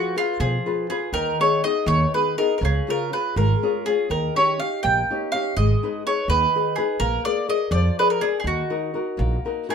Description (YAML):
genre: italian folk, Italian serenade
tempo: 82 BPM (dotted quarters)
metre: 6/8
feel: rubato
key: Eb minor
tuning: A4 = 442 Hz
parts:
  - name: mandolin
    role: melody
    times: 0.0-9.7 s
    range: F4 to G5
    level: -23 LUFS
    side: right 3 dB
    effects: none
  - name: nylon-string guitar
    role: accompaniment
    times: 0.0-9.7 s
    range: Db3 to D5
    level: -24 LUFS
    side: left 5 dB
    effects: none
  - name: upright bass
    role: bass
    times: 0.4-9.4 s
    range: Ab1 to Cb3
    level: -22 LUFS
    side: right 1 dB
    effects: none
room: moderate studio reverb, RT60 0.5 s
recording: minimal, uncompressed stereo recording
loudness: -19 LUFS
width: side -7 dB against mid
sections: 0.0-9.7 A section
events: none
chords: 0.0 Fdim; 1.1 Abm/Eb; 2.6 Db; 4.1 Eb7; 5.6 Abm; 7.0 Bb7; 8.5 Ebm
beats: 0.40 | 1.13 1.87 | 2.61 3.35 | 4.10 4.84 | 5.58 6.29 | 7.01 7.72 | 8.45 9.19